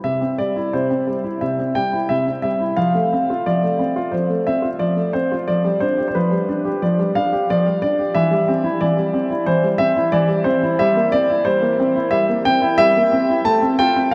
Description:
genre	classical-period piano sonatina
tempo	90 BPM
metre	4/4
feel	rubato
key	C major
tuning	A4 = 442 Hz
part	warm baby grand piano	solo	0.0-14.1 s	C3 to A5	-18 LUFS	equal	none
room	wet huge ambient reverb, RT60 8.3 s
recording	in a vast, echoing space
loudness	-18 LUFS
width	mono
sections	0.0-14.1 A section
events	none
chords	0.0 C; 2.8 F; 5.5 G7/F; 8.1 C/E; 10.8 C7/G; 13.5 F/A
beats	| 0.04 0.73 1.41 2.10 | 2.78 3.46 4.13 4.80 | 5.49 6.15 6.82 7.48 | 8.15 8.81 9.47 10.13 | 10.79 11.45 12.11 12.78 | 13.45 14.12

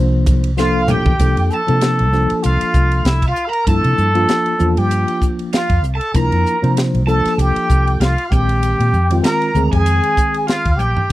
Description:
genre	electric jazz fusion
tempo	97 BPM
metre	4/4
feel	swing 56% on 16ths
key	unclear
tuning	A4 = 440 Hz
part	tine electric piano	accompaniment	0.0-11.1 s	Eb3 to C5	-20 LUFS	left 1 dB	overdrive, fast stereo tremolo
part	vintage muted fingered electric bass	bass	0.0-10.9 s	Bb1 to C3	-16 LUFS	equal	none
part	crisp fusion drum kit	drums	0.3-11.1 s	hi-hat, kick drum, ride cymbal, snare drum, toms	-18 LUFS	equal	none
part	congas	percussion	0.3-1.2 s	none	-24 LUFS	right 1 dB	none
part	trumpet with plunger mute	melody	0.6-11.1 s	E4 to Bb4	-19 LUFS	equal	none
part	cranked stack guitar	second line	0.6-11.1 s	E5 to Bb5	-25 LUFS	right 2 dB	overdrive
room	little or no reverb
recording	dry, close 1970s-style studio recording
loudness	-13 LUFS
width	side -16 dB against mid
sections	0.0-1.2 A section; 1.2-11.1 B section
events	drum fill 0.6-1.2, 10.8-11.1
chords	0.0 C13sus4; 8.3 Bb13sus4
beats	0.57 | 1.19 1.81 2.43 3.05 | 3.67 4.29 4.91 5.53 | 6.15 6.77 7.39 8.01 | 8.62 9.24 9.87 10.48 | 11.11

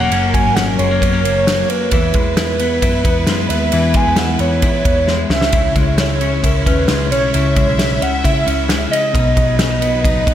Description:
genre	jangly indie pop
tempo	133 BPM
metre	4/4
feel	straight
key	unclear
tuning	A4 = 440 Hz
part	warbly nostalgic lead	melody	0.0-10.3 s	A#4 to G#5	-18 LUFS	right 2 dB	chorus, tremolo, slapback echo
part	rich studio string section	sustained chords	0.0-10.3 s	F#3 to E5	-25 LUFS	right 1 dB	none
part	clean electric guitar	arpeggios	0.0-10.3 s	F#2 to E4	-19 LUFS	left 4 dB	slapback echo
part	vintage muted picked electric bass	bass	0.0-10.3 s	F#1 to E3	-20 LUFS	equal	tube saturation
part	modern studio drum kit	drums	0.1-10.3 s	kick drum, ride cymbal, snare drum	-18 LUFS	equal	none
room	moderate lush hall reverb, RT60 2.2 s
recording	big arena sound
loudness	-13 LUFS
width	side -11 dB against mid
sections	0.0-10.3 A section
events	drum fill 5.1-5.5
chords	0.0 F#; 1.9 E; 5.3 C#m; 9.1 B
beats	| 0.12 0.57 1.02 1.47 | 1.92 2.37 2.83 3.28 | 3.73 4.18 4.63 5.08 | 5.53 5.98 6.43 6.89 | 7.34 7.79 8.24 8.69 | 9.14 9.60 10.05

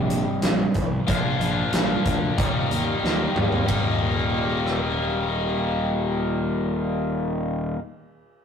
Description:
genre	classic rock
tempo	92 BPM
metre	4/4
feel	straight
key	Eb major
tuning	A4 = 440 Hz
part	biting overdriven guitar	riff	0.0-7.8 s	Eb2 to G4	-25 LUFS	left 3 dB	none
part	fuzz picked electric bass	bass	0.0-7.7 s	Eb1 to Eb2	-27 LUFS	equal	overdrive
part	big rock drum kit	drums	0.1-4.8 s	hi-hat, kick drum, ride cymbal, rim click, snare drum, toms	-25 LUFS	right 1 dB	none
room	moderate stone room reverb, RT60 1.0 s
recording	rough rehearsal-room recording, tube saturation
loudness	-21 LUFS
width	side -7 dB against mid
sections	0.0-3.7 A section; 3.7-6.3 B section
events	drum fill 3.0-3.7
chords	0.0 Cm; 1.1 Bb; 2.4 Eb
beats	0.42 | 1.07 1.72 2.37 3.02 | 3.68 4.33 4.98 5.63

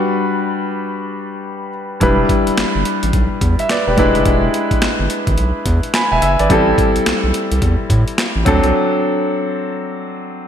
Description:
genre	R&B, new jack swing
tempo	107 BPM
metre	4/4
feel	swing 62% on 16ths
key	E minor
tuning	A4 = 440 Hz
part	warm concert grand piano	accompaniment	0.0-10.5 s	F#3 to B5	-16 LUFS	left 1 dB	none
part	round analog bass	bass	2.0-8.7 s	E1 to A2	-18 LUFS	equal	none
part	breakbeat sampler-style drum kit	drums	2.0-8.7 s	handclaps, hi-hat, kick drum, snare drum	-19 LUFS	equal	gated reverb
room	moderate lush hall reverb, RT60 2.8 s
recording	bright 1980s-style digital production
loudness	-13 LUFS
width	side -9 dB against mid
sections	0.0-10.5 A section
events	break 0.0-2.0, 8.7-10.5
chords	0.0 Gmaj7; 2.0 Em7; 4.0 E7; 6.5 Am7; 8.5 D7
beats	0.33 0.89 1.45 | 2.01 2.57 3.13 3.69 | 4.25 4.82 5.38 5.94 | 6.50 7.06 7.62 8.18 | 8.74 9.30 9.86 10.42

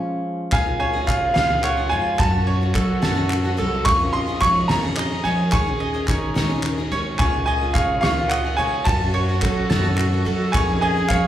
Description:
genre	indie folk with a building arrangement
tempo	72 BPM (dotted quarters)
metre	6/8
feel	straight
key	Db major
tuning	A4 = 440 Hz
part	fingerpicked old ladder-braced acoustic guitar	accompaniment	0.0-2.2 s	F3 to F4	-29 LUFS	equal	slapback echo
part	bright upright piano	melody	0.5-11.3 s	F5 to Db6	-22 LUFS	right 1 dB	slapback echo
part	clear French horn	second line	0.5-11.3 s	Eb4 to Bb4	-29 LUFS	right 1 dB	slapback echo, digital delay
part	picked steel-string acoustic guitar	accompaniment	0.5-11.3 s	Db3 to A4	-29 LUFS	left 5 dB	slapback echo
part	mandolin	arpeggios	0.5-11.3 s	F4 to Db6	-27 LUFS	right 5 dB	slapback echo
part	upright bass	bass	0.5-11.3 s	C2 to Gb3	-24 LUFS	equal	none
part	soft-mallet drum kit	drums	0.5-11.2 s	kick drum, ride cymbal, snare drum	-24 LUFS	equal	none
part	group handclap	percussion	0.5-11.2 s	none	-30 LUFS	left 1 dB	none
room	moderate club reverb, RT60 0.7 s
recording	live gig heard through the venue's PA, club reverb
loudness	-18 LUFS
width	side -11 dB against mid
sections	0.5-11.3 A section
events	none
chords	0.0 Db; 0.5 Dbadd9; 2.2 Gbm; 3.9 Dbadd9/F; 5.5 Absus4/Eb; 7.2 Dbadd9; 8.9 Gbm; 10.5 Dbadd9/F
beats	| 0.52 1.36 | 2.19 3.03 | 3.86 4.70 | 5.53 6.37 | 7.20 8.03 | 8.87 9.70 | 10.54

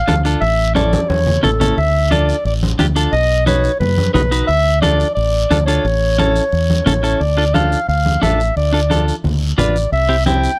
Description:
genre	latin, cumbia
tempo	177 BPM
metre	4/4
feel	straight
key	D harmonic minor, D dorian from 7.2 s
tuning	A4 = 440 Hz
part	warm clarinet	melody	0.0-10.6 s	A4 to G5	-20 LUFS	equal	none
part	clean electric guitar	accompaniment	0.1-10.5 s	C4 to B4	-21 LUFS	equal	none
part	deep dub fingered electric bass	bass	0.1-10.5 s	A1 to F#2	-20 LUFS	equal	none
part	congas	percussion	0.1-10.4 s	none	-23 LUFS	equal	none
part	guiro	percussion	0.1-10.6 s	none	-33 LUFS	equal	none
room	small room ambience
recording	dry, close 1970s-style studio recording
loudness	-15 LUFS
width	mono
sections	0.0-7.2 A section; 7.2-10.6 B section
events	drum fill 0.8-1.8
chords	0.4 A; 1.8 Dm; 3.1 B; 4.5 Dm; 5.8 A; 7.2 Dm; 9.9 C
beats	0.08 | 0.42 0.76 1.09 1.44 | 1.77 2.11 2.45 2.79 | 3.13 3.47 3.81 4.15 | 4.49 4.83 5.17 5.51 | 5.85 6.19 6.53 6.87 | 7.21 7.55 7.89 8.22 | 8.56 8.90 9.24 9.58 | 9.92 10.26

